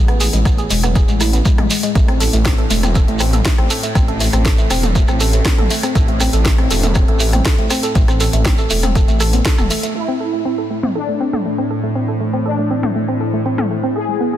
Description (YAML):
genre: melodic techno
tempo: 120 BPM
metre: 4/4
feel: straight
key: A harmonic minor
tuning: A4 = 440 Hz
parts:
  - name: woody wave-folded pluck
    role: arpeggios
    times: 0.0-14.4 s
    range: G#3 to A4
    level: -21 LUFS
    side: right 1 dB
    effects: chorus, sidechain pumping, tape echo
  - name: swelling detuned saw bass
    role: bass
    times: 0.0-9.7 s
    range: E1 to A1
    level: -17 LUFS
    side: equal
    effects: sidechain pumping
  - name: bowed-like drone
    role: drone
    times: 0.1-14.4 s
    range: A2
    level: -28 LUFS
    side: left 1 dB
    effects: built-in reverb, phaser, sidechain pumping
  - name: house drum kit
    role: drums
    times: 0.1-13.7 s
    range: hi-hat, rim click, snare drum, toms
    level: -22 LUFS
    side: left 1 dB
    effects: overdrive, low-pass filter on hats, studio reverb, low-pass filter on snare, low-pass filter on toms
  - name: shekere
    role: percussion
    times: 0.2-9.9 s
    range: none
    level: -25 LUFS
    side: right 3 dB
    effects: none
  - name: electronic kick drum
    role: drums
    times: 0.5-9.6 s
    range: none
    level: -15 LUFS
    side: equal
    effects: studio reverb
  - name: resonant sweep polysynth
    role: melody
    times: 10.0-14.4 s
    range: D4 to G#4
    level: -22 LUFS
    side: left 2 dB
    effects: chorus, tape echo
  - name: deep dark ambient pad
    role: sustained chords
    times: 11.7-14.4 s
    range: A2 to C5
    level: -22 LUFS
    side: equal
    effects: chorus, built-in reverb, sidechain pumping
room: little or no reverb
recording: dense, heavily limited modern master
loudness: -13 LUFS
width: side -12 dB against mid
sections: 0.0-10.0 A section; 10.0-14.4 B section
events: filter sweep on synth pluck 0.0-10.0; filter sweep on drum 10.0-14.4; filter sweep on analog polysynth 10.0-14.4; filter sweep on ambient pad 10.0-14.4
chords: 0.0 E; 2.0 Am/E; 6.0 Esus4; 10.0 Am